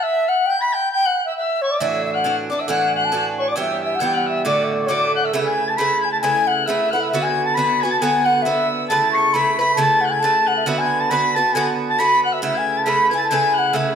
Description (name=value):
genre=celtic folk, Celtic polka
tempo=136 BPM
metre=2/4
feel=swing 57% on 8ths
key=D major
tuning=A4 = 439 Hz
part: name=baroque flute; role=melody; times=0.0-14.0 s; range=C#5 to C#6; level=-19 LUFS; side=left 1 dB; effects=slapback echo
part: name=tin whistle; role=second line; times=0.0-13.9 s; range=C#6 to C#7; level=-22 LUFS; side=left 1 dB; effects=none
part: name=Irish bouzouki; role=accompaniment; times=1.8-14.0 s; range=G2 to B4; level=-22 LUFS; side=right 4 dB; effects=none
room=wet recital hall reverb, RT60 1.8 s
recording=none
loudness=-16 LUFS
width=side -7 dB against mid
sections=0.0-5.3 A section; 5.3-12.4 B section; 12.4-14.0 B section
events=none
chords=0.0 N.C.; 1.8 Dadd9; 3.6 Em; 4.5 D; 5.3 Aadd9; 7.1 Bm; 8.9 Aadd9; 10.7 Bm; 12.4 Aadd9